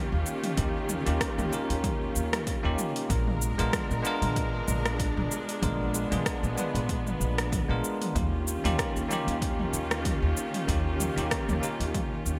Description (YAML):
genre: sunset chillout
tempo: 95 BPM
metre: 4/4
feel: swing 55% on 16ths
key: unclear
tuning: A4 = 440 Hz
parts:
  - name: bell-like tine electric piano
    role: accompaniment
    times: 0.0-12.4 s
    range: Ab3 to Cb5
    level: -35 LUFS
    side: equal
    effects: digital delay
  - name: muted studio string section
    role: sustained chords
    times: 0.0-12.4 s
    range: Eb3 to Bb4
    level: -37 LUFS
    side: equal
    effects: none
  - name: upright bass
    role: bass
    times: 0.0-12.4 s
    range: Bb1 to Eb2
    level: -33 LUFS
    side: equal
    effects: none
  - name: deep house drum kit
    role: drums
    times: 0.3-12.4 s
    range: cabasa, hi-hat, rim click, toms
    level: -35 LUFS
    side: equal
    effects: overdrive, gated reverb
  - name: electronic kick drum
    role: drums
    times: 0.6-12.1 s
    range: none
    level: -36 LUFS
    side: equal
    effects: overdrive
room: moderate lush hall reverb, RT60 2.4 s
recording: bright 1980s-style digital production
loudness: -29 LUFS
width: mono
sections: 0.0-12.4 A section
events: none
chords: 0.0 Eb9; 3.1 Bb7b9; 8.2 Eb9